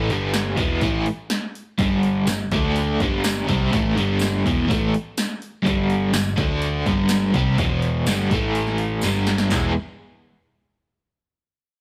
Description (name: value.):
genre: garage rock duo or trio.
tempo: 124 BPM.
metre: 4/4.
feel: straight.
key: E minor.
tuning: A4 = 437 Hz.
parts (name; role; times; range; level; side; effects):
crunchy overdriven guitar; riff; 0.0-9.7 s; E2 to G#4; -23 LUFS; equal; tremolo.
hollow-body short-scale picked electric bass; bass; 0.0-9.7 s; E1 to D2; -29 LUFS; equal; none.
punchy analog drum machine; drums; 0.1-9.6 s; handclaps, hi-hat, kick drum, snare drum; -27 LUFS; equal; none.
tambourine; percussion; 2.3-9.7 s; none; -38 LUFS; equal; none.
room: light reverb.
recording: rough rehearsal-room recording, warm saturation.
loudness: -21 LUFS.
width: mono.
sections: 0.0-9.5 A section; 9.5-11.4 B section.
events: drum fill 9.0-9.5.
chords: 0.0 G5; 2.5 D5; 3.0 G5; 6.4 D5; 6.9 G5; 7.6 E5; 8.1 G5; 8.3 A5; 9.0 G5; 9.5 E.